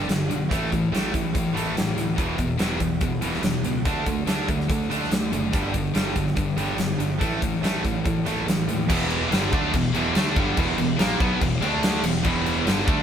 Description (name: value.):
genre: hard rock.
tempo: 143 BPM.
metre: 4/4.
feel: straight.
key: E minor.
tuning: A4 = 440 Hz.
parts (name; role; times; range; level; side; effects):
distorted electric guitar; riff; 0.0-13.0 s; E2 to D4; -27 LUFS; right 6 dB; overdrive.
scooped high-gain guitar; riff; 0.0-13.0 s; E2 to D4; -27 LUFS; left 6 dB; distortion.
fuzz fingered electric bass; bass; 0.0-13.0 s; E1 to D3; -30 LUFS; equal; overdrive.
huge arena drum kit; drums; 0.1-13.0 s; crash cymbal, hi-hat, kick drum, snare drum; -25 LUFS; equal; none.
high-gain distorted guitar; riff; 8.9-13.0 s; E2 to D4; -29 LUFS; equal; distortion.
room: moderate stone room reverb, RT60 1.1 s.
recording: band playing live in one room.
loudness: -21 LUFS.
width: side -8 dB against mid.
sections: 0.0-8.9 A section; 8.9-13.0 B section.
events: none.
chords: 0.5 A5; 2.2 E5; 3.9 D5; 5.5 G5; 7.2 A5; 8.9 Em; 11.6 D5; 12.0 Em.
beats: 0.08 | 0.50 0.92 1.34 1.76 | 2.18 2.60 3.02 3.44 | 3.85 4.28 4.69 5.11 | 5.53 5.95 6.37 6.79 | 7.21 7.63 8.05 8.47 | 8.89 9.31 9.73 10.15 | 10.57 10.99 11.41 11.83 | 12.24 12.66.